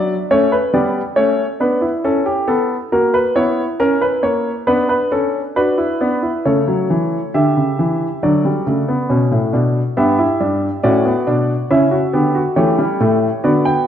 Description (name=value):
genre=classical, baroque-style 4-part fugue for grand piano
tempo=69 BPM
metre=4/4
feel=straight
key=unclear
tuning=A4 = 443 Hz
part: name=warm baby grand piano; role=solo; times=0.0-13.9 s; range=G2 to G5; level=-14 LUFS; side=equal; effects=none
room=moderate recital hall reverb, RT60 1.6 s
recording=dark, warm production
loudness=-14 LUFS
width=side -9 dB against mid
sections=0.0-6.5 A section; 6.5-13.9 B section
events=none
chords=0.0 Bm; 1.2 A; 2.9 F#7/A#; 4.7 Bm; 6.5 A/C#; 8.2 D; 10.0 G; 11.7 C#dim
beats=0.30 1.17 2.04 | 2.92 3.79 4.67 5.56 | 6.46 7.35 8.23 9.10 | 9.97 10.84 11.70 12.57 | 13.44